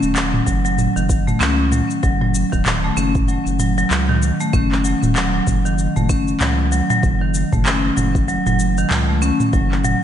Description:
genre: organic downtempo.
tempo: 96 BPM.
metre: 4/4.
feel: swing 58% on 16ths.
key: F# dorian.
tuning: A4 = 440 Hz.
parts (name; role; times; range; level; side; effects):
marimba with hard mallets; arpeggios; 0.0-10.0 s; D#3 to C#4; -19 LUFS; equal; digital delay, slapback echo.
round analog bass; bass; 0.0-9.9 s; D#1 to C#2; -21 LUFS; equal; none.
afro-pop drum kit; drums; 0.0-10.0 s; cabasa, handclaps, toms; -22 LUFS; equal; studio reverb.
electronic kick drum; drums; 0.5-9.7 s; none; -20 LUFS; equal; studio reverb.
room: moderate scoring stage reverb, RT60 1.9 s.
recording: big arena sound, nothing above 10.3 kHz.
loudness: -15 LUFS.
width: side -10 dB against mid.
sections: 0.0-10.0 A section.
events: none.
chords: 0.0 F#5.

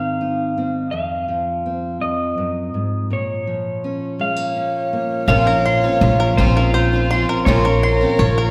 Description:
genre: folk.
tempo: 55 BPM (dotted quarters).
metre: 6/8.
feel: straight.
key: Bb minor.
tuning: A4 = 435 Hz.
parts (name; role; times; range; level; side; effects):
electric guitar through a small old amp; melody; 0.0-8.5 s; C5 to F5; -25 LUFS; equal; harmonic tremolo.
fingerpicked steel-string acoustic guitar; accompaniment; 0.0-7.5 s; F2 to Eb4; -28 LUFS; equal; none.
dark fiddle; second line; 4.2-8.5 s; F4 to Db5; -25 LUFS; equal; none.
dark upright piano; accompaniment; 5.3-8.5 s; Bb1 to Db5; -29 LUFS; equal; none.
picked twelve-string acoustic guitar; accompaniment; 5.3-8.5 s; Bb2 to F4; -24 LUFS; equal; none.
upright bass; bass; 5.3-8.5 s; Bb1; -20 LUFS; equal; none.
bluegrass banjo; arpeggios; 5.5-8.5 s; Bb4 to C6; -26 LUFS; equal; none.
room: wet concert hall reverb, RT60 2.0 s.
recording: recorded in a church or concert hall.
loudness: -19 LUFS.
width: mono.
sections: 0.0-5.3 A section; 5.3-8.5 B section.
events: none.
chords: 0.0 Ab; 0.9 Fm; 3.1 Bbm; 5.3 Bbmadd9.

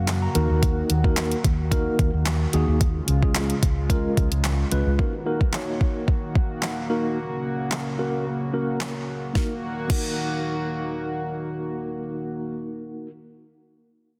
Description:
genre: dance-pop.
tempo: 110 BPM.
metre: 4/4.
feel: straight.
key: Eb minor.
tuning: A4 = 439 Hz.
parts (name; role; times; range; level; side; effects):
mellow tine electric piano; accompaniment; 0.0-13.1 s; Ab3 to Bb5; -31 LUFS; equal; sidechain pumping.
chorused pulse-width pad; sustained chords; 0.0-12.5 s; Db3 to Gb4; -33 LUFS; equal; sidechain pumping.
fingered electric bass; bass; 0.0-5.0 s; Db2 to Gb2; -26 LUFS; equal; sidechain pumping.
smooth R&B drum kit; drums; 0.1-10.1 s; crash cymbal, handclaps, hi-hat, kick drum, snare drum; -27 LUFS; equal; none.
room: light reverb.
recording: dense, heavily limited modern master.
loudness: -24 LUFS.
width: mono.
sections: 0.0-5.0 A section; 5.0-9.4 B section; 9.4-13.7 C section.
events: tine electric piano fill 0.0-0.6.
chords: 0.4 Ebm; 2.8 Db; 5.0 Ebm; 7.2 Gb; 9.4 Ebm.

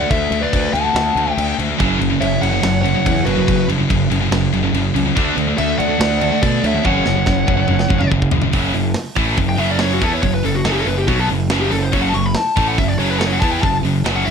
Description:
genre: heavy metal.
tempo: 142 BPM.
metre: 4/4.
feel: straight.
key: F# minor.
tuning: A4 = 440 Hz.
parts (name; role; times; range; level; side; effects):
high-gain lead guitar; melody; 0.0-14.3 s; F#4 to C#6; -21 LUFS; left 3 dB; distortion.
high-gain lead guitar; second line; 0.0-8.1 s; F#4 to F#5; -24 LUFS; right 7 dB; distortion.
scooped high-gain guitar; riff; 0.0-14.3 s; F#2 to E4; -21 LUFS; left 9 dB; distortion.
fuzz picked electric bass; bass; 0.0-14.3 s; F#1 to B2; -21 LUFS; equal; overdrive.
tight metal drum kit; drums; 0.1-14.3 s; crash cymbal, hi-hat, kick drum, snare drum, toms; -22 LUFS; equal; none.
high-gain distorted guitar; riff; 1.8-14.3 s; F#2 to E4; -21 LUFS; right 12 dB; distortion.
room: moderate studio ambience, RT60 0.5 s.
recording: dark, warm production.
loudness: -14 LUFS.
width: side -6 dB against mid.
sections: 0.0-8.5 A section; 8.5-14.3 B section.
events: half time 0.0-8.5; drum fill 6.8-8.5; lead electric guitar solo 8.5-14.3.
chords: 0.0 D; 1.8 F#5; 5.2 D; 6.8 F#5; 8.5 F#m.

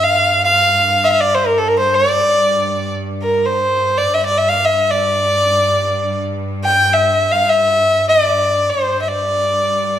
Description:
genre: Turkish makam ensemble.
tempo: free time.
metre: none.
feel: none.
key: G makam huseyni.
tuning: A4 = 440 Hz.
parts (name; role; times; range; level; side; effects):
clear violin; melody; 0.0-10.0 s; A4-27c to G5; -13 LUFS; equal; none.
bright studio cello section; drone; 0.0-10.0 s; G2; -24 LUFS; equal; none.
room: wet recital hall reverb, RT60 1.6 s.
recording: none.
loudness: -13 LUFS.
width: side -10 dB against mid.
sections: 0.0-10.0 A section.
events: none.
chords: none.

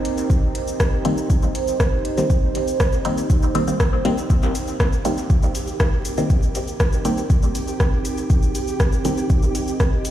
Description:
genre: dub techno.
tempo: 120 BPM.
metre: 4/4.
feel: straight.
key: C minor.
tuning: A4 = 440 Hz.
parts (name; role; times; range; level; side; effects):
deep dark ambient pad; sustained chords; 0.0-10.1 s; C4 to Eb5; -26 LUFS; right 3 dB; chorus, built-in reverb, sidechain pumping.
deep house drum kit; drums; 0.1-10.1 s; cabasa, hi-hat, rim click; -28 LUFS; equal; overdrive, dub echo.
electronic kick drum; drums; 0.3-9.9 s; none; -19 LUFS; equal; overdrive.
warbly dusty pluck; riff; 1.1-9.2 s; Eb4 to G5; -35 LUFS; left 1 dB; none.
filtered dub chord stab; stabs; 1.1-9.2 s; Eb3 to C4; -26 LUFS; left 1 dB; phaser, sidechain pumping, dub echo.
flickering grainy texture; texture; 5.0-10.1 s; G4; -32 LUFS; right 2 dB; built-in reverb, sidechain pumping.
room: light reverb.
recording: played on a big sound system in a bare room, stone room reverb, vinyl crackle.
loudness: -18 LUFS.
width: side -12 dB against mid.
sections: 0.0-4.3 A section; 4.3-10.1 A section.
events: filter sweep on synth stab 4.3-10.1.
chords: 0.0 Cm7.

